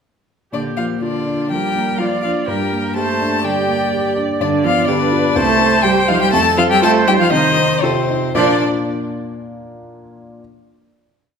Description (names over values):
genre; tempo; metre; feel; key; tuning
quick classical-period movement for piano quintet; 123 BPM; 4/4; uneven beats; Bb major; A4 = 440 Hz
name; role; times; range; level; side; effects
warm violin; melody; 0.5-8.6 s; C5 to A5; -19 LUFS; left 6 dB; none
rich cello; second line; 0.5-8.6 s; C3 to D4; -21 LUFS; right 5 dB; none
rich violin; second line; 0.5-8.6 s; C4 to A4; -22 LUFS; left 2 dB; none
dark grand piano; accompaniment; 0.5-10.4 s; C2 to D5; -21 LUFS; equal; none
rich viola; accompaniment; 0.5-8.6 s; F3 to D5; -21 LUFS; right 4 dB; none
room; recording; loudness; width
wet scoring stage reverb, RT60 1.6 s; minimal, uncompressed stereo recording; -14 LUFS; side -6 dB against mid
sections
0.5-8.4 A section; 8.4-10.4 final chord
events
none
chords
0.5 Bb; 2.5 Gm; 4.4 G7; 5.4 Cm; 6.3 F7; 8.4 Bb